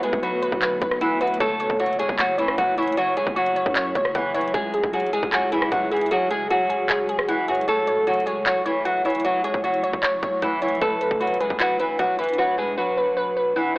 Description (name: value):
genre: hip hop, trap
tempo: 153 BPM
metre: 4/4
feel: half-time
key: F# minor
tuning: A4 = 438 Hz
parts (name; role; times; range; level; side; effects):
- nylon-string guitar; melody; 0.0-13.8 s; E3 to A4; -23 LUFS; equal; low-pass filter
- glassy wavetable pluck; accompaniment; 0.0-13.8 s; G#4 to F#5; -24 LUFS; equal; chorus, low-pass filter
- granular cloud pad; sustained chords; 0.0-13.8 s; B2 to F#4; -35 LUFS; equal; built-in reverb
- trap drum kit; drums; 0.0-12.4 s; handclaps, hi-hat, kick drum, rim click; -26 LUFS; equal; none
- growling 808-style bass; bass; 0.1-6.1 s; F#1 to F#2; -34 LUFS; equal; none
room: light reverb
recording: blown-out, overdriven recording, overdrive, AM radio sound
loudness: -20 LUFS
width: side -23 dB against mid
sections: 0.0-7.7 A section; 7.7-13.8 B section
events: kick muted 6.1-7.7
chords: 0.0 Bm7; 1.4 F#m7; 4.5 C#sus4; 7.7 F#m7; 10.8 Bm7